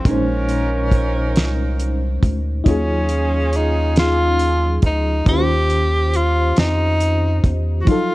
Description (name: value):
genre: slow six-eight R&B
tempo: 46 BPM (dotted quarters)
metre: 6/8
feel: straight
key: unclear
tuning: A4 = 442 Hz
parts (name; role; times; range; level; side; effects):
- breathy tenor saxophone; melody; 0.0-8.1 s; Db4 to G4; -21 LUFS; equal; none
- FM electric piano with tremolo; accompaniment; 0.0-8.1 s; Bb2 to C5; -23 LUFS; left 1 dB; phaser
- clear horn section; stabs; 0.0-4.8 s; Db4 to Bb4; -29 LUFS; right 4 dB; digital delay
- rubbery square bass; bass; 0.1-7.8 s; Bb1 to F2; -19 LUFS; equal; none
- damped 70s drum kit; drums; 0.1-8.1 s; hi-hat, kick drum, snare drum; -16 LUFS; equal; none
room: small room ambience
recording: worn, warbling old tape, cassette tape, warbly pitch drift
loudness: -15 LUFS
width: side -18 dB against mid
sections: 0.0-8.1 A section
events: none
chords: 0.0 Bbm11; 2.6 Ebm11; 5.3 Eb13